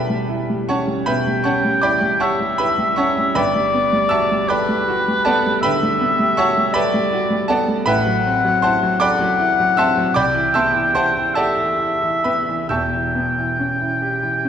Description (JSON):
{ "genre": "classical, impressionist duo for oboe and grand piano", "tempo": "42-54 BPM (dotted quarters)", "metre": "12/8", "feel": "rubato", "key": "E dorian", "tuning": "A4 = 440 Hz", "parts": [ { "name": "clear grand piano", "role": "accompaniment", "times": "0.0-14.5 s", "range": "E1 to E6", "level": "-18 LUFS", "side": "right 1 dB", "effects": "none" }, { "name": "clear oboe", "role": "melody", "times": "1.1-14.5 s", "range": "B4 to G5", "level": "-18 LUFS", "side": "left 2 dB", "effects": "none" } ], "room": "moderate scoring stage reverb, RT60 1.8 s", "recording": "dark, warm production", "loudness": "-16 LUFS", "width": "side -8 dB against mid", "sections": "0.0-14.5 A section", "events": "none", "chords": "0.0 Em6; 3.4 Gmaj9; 7.9 Am6; 10.1 Cmaj7; 12.7 Em6" }